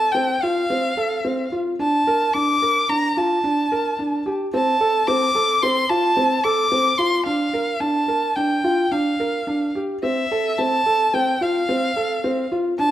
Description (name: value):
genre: contemporary instrumental, contemporary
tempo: 109 BPM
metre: 5/4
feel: straight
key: F major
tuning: A4 = 439 Hz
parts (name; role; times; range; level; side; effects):
- warm violin; melody; 0.0-12.9 s; E5 to D6; -20 LUFS; equal; none
- felt-muted upright piano; arpeggios; 0.0-12.9 s; C4 to Bb4; -21 LUFS; right 1 dB; none
room: moderate recital hall reverb, RT60 1.4 s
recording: none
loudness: -18 LUFS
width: side -12 dB against mid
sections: 0.0-12.9 A section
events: none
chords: 0.0 F; 1.8 Bbmaj7; 4.5 F; 7.3 Bbmaj7; 10.0 Fmaj7